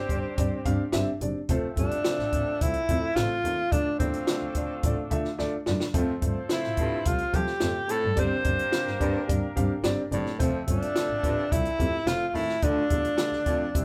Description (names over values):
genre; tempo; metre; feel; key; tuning
uptempo 1960s-style soul; 108 BPM; 4/4; straight; F major; A4 = 440 Hz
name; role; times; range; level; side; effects
breathy tenor saxophone; melody; 0.0-13.8 s; C4 to C5; -30 LUFS; equal; none
warm horn section; second line; 0.0-13.8 s; F3 to C5; -41 LUFS; equal; none
dark upright piano; accompaniment; 0.0-13.8 s; G2 to F5; -34 LUFS; equal; none
warm double bass; bass; 0.1-13.8 s; F1 to F3; -34 LUFS; equal; none
compact cocktail drum kit; drums; 0.1-13.8 s; hi-hat, kick drum, snare drum; -32 LUFS; equal; none
raspy baritone saxophone; riff; 5.9-13.7 s; D2 to C3; -36 LUFS; equal; none
room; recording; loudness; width
moderate studio reverb, RT60 0.5 s; band playing live in one room; -27 LUFS; mono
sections
0.0-13.8 A section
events
drum fill 5.4-5.9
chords
0.0 Csus2/G; 1.5 F; 3.7 Dm; 5.9 F; 8.2 Csus2/G; 10.4 F; 12.6 Dm